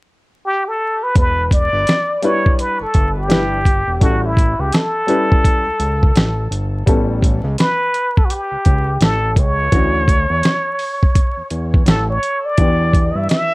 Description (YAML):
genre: hip hop, jazz-hop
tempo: 84 BPM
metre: 4/4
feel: swing 62% on 16ths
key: E dorian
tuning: A4 = 439 Hz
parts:
  - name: trumpet with plunger mute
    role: melody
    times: 0.5-13.5 s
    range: E4 to E5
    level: -18 LUFS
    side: equal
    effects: tape echo
  - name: fat analog bass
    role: bass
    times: 1.2-13.3 s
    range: E1 to G2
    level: -20 LUFS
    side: equal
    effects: none
  - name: dusty soul sampler-style drum kit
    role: drums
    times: 1.2-13.5 s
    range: hi-hat, kick drum, snare drum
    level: -14 LUFS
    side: equal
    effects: none
  - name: clear upright piano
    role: accompaniment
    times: 2.2-13.5 s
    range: E3 to B4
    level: -20 LUFS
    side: left 2 dB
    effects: none
room: light reverb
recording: dark, warm production, vinyl crackle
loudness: -13 LUFS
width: side -22 dB against mid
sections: 0.0-1.2 A section; 1.2-13.5 B section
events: none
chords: 0.0 N.C.; 1.2 Em7; 4.0 A7; 6.9 A9; 9.7 Dmaj7sus2; 12.6 Em7